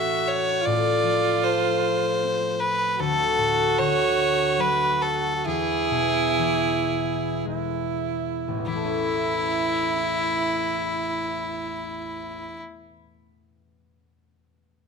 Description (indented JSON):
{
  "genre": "celtic folk, Celtic slow air",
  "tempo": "47-78 BPM",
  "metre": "3/4",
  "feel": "rubato",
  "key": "A major",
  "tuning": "A4 = 441 Hz",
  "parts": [
    { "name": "clear fiddle", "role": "melody", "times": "0.0-12.6 s", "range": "E4 to E5", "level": "-24 LUFS", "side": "left 2 dB", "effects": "none" },
    { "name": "warm tenor saxophone", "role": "second line", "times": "0.0-12.6 s", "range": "E4 to F#4", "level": "-27 LUFS", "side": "right 13 dB", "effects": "none" },
    { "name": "concert harp", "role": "accompaniment", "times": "0.0-12.8 s", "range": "A1 to C#4", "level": "-29 LUFS", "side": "left 8 dB", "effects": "none" }
  ],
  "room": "moderate echo chamber reverb, RT60 1.5 s, small room ambience",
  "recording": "1960s-style stereo with parts hard left and right",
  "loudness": "-21 LUFS",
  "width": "side -5 dB against mid",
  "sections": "0.0-8.7 A section; 8.7-12.3 B section",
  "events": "slowing down 3.0-8.7",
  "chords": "0.0 A; 0.6 F/A; 3.0 D; 5.4 E; 8.7 A"
}